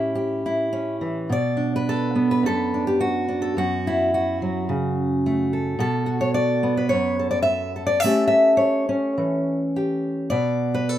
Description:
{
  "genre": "folk, solo fingerstyle acoustic guitar",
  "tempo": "107 BPM",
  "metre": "4/4",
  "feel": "rubato",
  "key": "B minor",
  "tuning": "A4 = 439 Hz",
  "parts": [
    { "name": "fingerpicked steel-string acoustic guitar", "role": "solo", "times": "0.0-11.0 s", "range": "F#2 to E5", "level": "-20 LUFS", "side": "equal", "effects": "none" }
  ],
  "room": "light reverb",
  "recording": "minimal, uncompressed stereo recording",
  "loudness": "-20 LUFS",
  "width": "side -12 dB against mid",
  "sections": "0.0-1.3 A section; 1.3-11.0 B section",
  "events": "none",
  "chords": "0.0 A7; 1.3 Bm7; 3.6 F#m; 5.8 Bm7; 8.0 A7; 10.3 Bm7",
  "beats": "0.17 0.73 | 1.31 1.88 2.45 3.02 | 3.58 4.13 4.69 5.25 | 5.80 6.36 6.91 7.47 | 8.03 8.60 9.16 9.74 | 10.31 10.89"
}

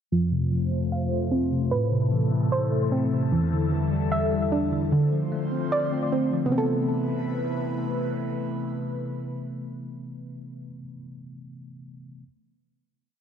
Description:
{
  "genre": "hip hop, trap",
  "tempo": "150 BPM",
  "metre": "4/4",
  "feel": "half-time",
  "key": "A minor",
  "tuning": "A4 = 440 Hz",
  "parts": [
    { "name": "mellow tine electric piano", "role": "accompaniment", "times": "0.1-12.2 s", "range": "E2 to C4", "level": "-27 LUFS", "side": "left 1 dB", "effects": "medium stereo tremolo, low-pass filter" },
    { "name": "airy breathy pad", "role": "sustained chords", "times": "0.4-10.5 s", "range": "C3 to C5", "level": "-31 LUFS", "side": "left 1 dB", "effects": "chorus, phaser, low-pass filter" },
    { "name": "soft round pluck", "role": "arpeggios", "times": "0.1-10.8 s", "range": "D3 to F5", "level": "-27 LUFS", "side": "right 2 dB", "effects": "chorus, low-pass filter, ping-pong delay" }
  ],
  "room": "moderate lush hall reverb, RT60 1.8 s",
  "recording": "none",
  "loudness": "-23 LUFS",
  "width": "side -8 dB against mid",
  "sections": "0.1-6.5 breakdown; 6.5-9.7 final chord",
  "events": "filter sweep 0.1-6.5",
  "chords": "0.1 F; 1.7 Amadd9; 3.3 Em7; 4.9 Dm7; 6.5 Amadd9",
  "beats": "| 0.12 0.52 0.92 1.32 | 1.72 2.12 2.52 2.92 | 3.32 3.72 4.12 4.52 | 4.92 5.32 5.72 6.12 | 6.52 6.92 7.32 7.72 | 8.12 8.52 8.92 9.32"
}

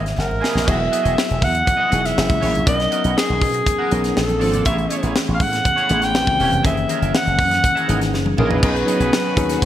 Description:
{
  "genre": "polished 1980s jazz-funk pop",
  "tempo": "121 BPM",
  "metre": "4/4",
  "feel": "straight",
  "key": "B major",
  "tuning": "A4 = 440 Hz",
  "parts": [
    { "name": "tine electric piano", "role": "accompaniment", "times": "0.0-9.7 s", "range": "D#3 to G#5", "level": "-23 LUFS", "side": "left 1 dB", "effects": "lush chorus" },
    { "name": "electric guitar at the edge of break-up", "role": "riff", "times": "0.0-9.7 s", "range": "A3 to F#5", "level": "-28 LUFS", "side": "right 4 dB", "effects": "analog chorus" },
    { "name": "slap bass with an envelope filter", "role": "bass", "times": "0.0-9.7 s", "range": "E1 to B2", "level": "-22 LUFS", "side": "equal", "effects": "none" },
    { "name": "tight funk drum kit", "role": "drums", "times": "0.1-9.7 s", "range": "crash cymbal, hi-hat, kick drum, snare drum, toms", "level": "-22 LUFS", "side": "equal", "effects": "none" },
    { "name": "breathy alto saxophone", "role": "melody", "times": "0.2-9.7 s", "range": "G#4 to G5", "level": "-20 LUFS", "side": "equal", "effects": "none" },
    { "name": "congas", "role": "percussion", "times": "0.2-8.6 s", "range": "none", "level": "-34 LUFS", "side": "right 2 dB", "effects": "none" },
    { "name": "warm studio string section", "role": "sustained chords", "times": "8.6-9.7 s", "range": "D#3 to F#4", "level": "-30 LUFS", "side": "left 3 dB", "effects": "none" }
  ],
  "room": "moderate lush hall reverb, RT60 1.8 s",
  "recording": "bright 1980s-style digital production, faint mains hum",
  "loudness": "-16 LUFS",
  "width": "side -11 dB against mid",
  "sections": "0.7-8.6 A section; 8.6-9.7 B section",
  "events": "tine electric piano fill 0.0-0.7; drum fill 0.2-0.7, 8.1-8.6",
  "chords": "0.0 F#13; 0.7 Emaj9; 2.2 F#9; 2.7 Bmaj7; 4.2 A#maj7; 4.7 Amaj7; 6.1 A#dim7; 6.6 F#13; 8.6 B6",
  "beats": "0.17 | 0.67 1.17 1.67 2.17 | 2.67 3.16 3.66 4.16 | 4.66 5.15 5.65 6.15 | 6.64 7.14 7.64 8.13 | 8.63 9.13 9.62"
}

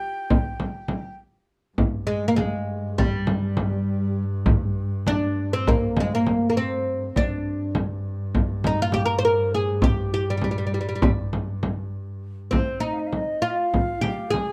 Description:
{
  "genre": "Turkish makam ensemble",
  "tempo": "201 BPM (eighths)",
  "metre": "9/8",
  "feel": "straight",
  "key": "G makam kurdi",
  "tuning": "A4 = 440 Hz",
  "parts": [
    { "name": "oud", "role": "melody", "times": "0.0-14.5 s", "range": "G3 to C5", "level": "-26 LUFS", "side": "equal", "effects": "none" },
    { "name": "breathy bright ney", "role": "second line", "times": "0.0-1.2, 12.5-14.5 s", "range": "C5 to Ab5", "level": "-34 LUFS", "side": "equal", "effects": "none" },
    { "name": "frame drum", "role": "percussion", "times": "0.3-14.5 s", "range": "none", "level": "-26 LUFS", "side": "equal", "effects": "none" },
    { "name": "bright double bass", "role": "drone", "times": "1.8-12.6 s", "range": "G2", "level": "-31 LUFS", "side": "equal", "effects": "none" }
  ],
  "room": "moderate small room reverb, RT60 0.5 s",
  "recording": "dark, warm production",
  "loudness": "-24 LUFS",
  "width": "mono",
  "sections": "0.0-1.8 A section; 1.8-12.5 B section; 12.5-14.5 C section",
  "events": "none",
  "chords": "none",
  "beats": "0.00 0.30 0.60 0.90 1.19 1.49 | 1.79 2.09 2.38 2.68 2.98 3.28 3.58 3.87 4.17 | 4.47 4.77 5.07 5.36 5.66 5.96 6.26 6.55 6.85 | 7.15 7.45 7.75 8.05 8.34 8.64 8.94 9.24 9.54 | 9.84 10.13 10.43 10.73 11.03 11.33 11.63 11.93 12.22 | 12.52 12.82 13.12 13.42 13.72 14.02 14.32"
}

